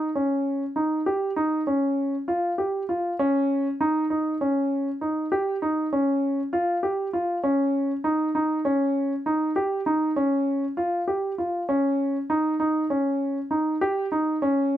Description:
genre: progressive instrumental, progressive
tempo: 198 BPM (eighths)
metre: 7/8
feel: straight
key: Eb mixolydian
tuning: A4 = 440 Hz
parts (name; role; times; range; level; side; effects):
- dark baby grand piano; solo; 0.0-14.8 s; Db4 to G4; -22 LUFS; equal; none
room: moderate studio reverb, RT60 0.6 s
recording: none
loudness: -22 LUFS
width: side -12 dB against mid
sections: 0.0-14.8 A section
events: none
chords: none

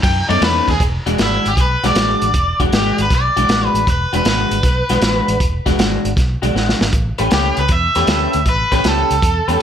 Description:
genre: electric blues shuffle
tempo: 157 BPM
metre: 4/4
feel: swing 68% on 8ths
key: E mixolydian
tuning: A4 = 443 Hz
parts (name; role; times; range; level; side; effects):
- raw garage guitar; melody; 0.0-9.6 s; E4 to G5; -18 LUFS; equal; overdrive, plate reverb
- vintage muted fingered electric bass; bass; 0.0-9.6 s; E1 to F#2; -20 LUFS; equal; none
- crunchy breakbeat drum kit; drums; 0.0-9.5 s; hi-hat, kick drum, ride cymbal, snare drum; -18 LUFS; equal; none
- electric guitar through a small old amp; riff; 0.3-9.6 s; B2 to B4; -20 LUFS; left 2 dB; analog chorus
room: light reverb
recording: none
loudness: -13 LUFS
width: side -9 dB against mid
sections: 0.8-9.6 A section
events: drum fill 6.6-6.9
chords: 0.0 B9; 0.8 E9; 6.9 A9

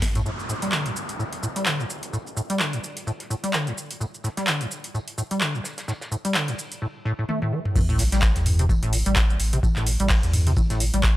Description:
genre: acid house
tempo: 128 BPM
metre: 4/4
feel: swing 57% on 16ths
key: A phrygian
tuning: A4 = 440 Hz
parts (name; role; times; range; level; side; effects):
- saturated sub bass; bass; 0.0-0.2, 7.8-11.2 s; A1 to E2; -23 LUFS; equal; sidechain pumping
- booming analog drum machine; drums; 0.0-11.1 s; crash cymbal, handclaps, hi-hat, shaker, snare drum, toms; -27 LUFS; equal; none
- electronic kick drum; drums; 0.0-0.1, 7.8-11.1 s; none; -22 LUFS; equal; none
- warm soul drum kit; drums; 0.0-11.2 s; hi-hat, snare drum, tambourine; -42 LUFS; equal; high-pass filter on hats, low-pass filter on hats, high-pass filter on snare, low-pass filter on snare, high-pass filter on perc, low-pass filter on perc, high-pass filter on room, low-pass filter on room
- deep acid bass; riff; 0.2-11.0 s; A2 to A3; -27 LUFS; equal; tube saturation, lush chorus, sidechain pumping, analog delay
- downlifter and sub drop; sound effects; 0.3-4.0, 7.8-9.6 s; none; -32 LUFS; equal; none
room: digital ambience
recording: dry, gritty hardware recording, transformer saturation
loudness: -22 LUFS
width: side -15 dB against mid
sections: 0.3-7.8 A section; 7.8-11.2 B section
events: drum fill 0.0, 7.3-7.8; band accent 0.0; drop 7.8-11.2; impact 7.8-9.6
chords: 0.3 A5

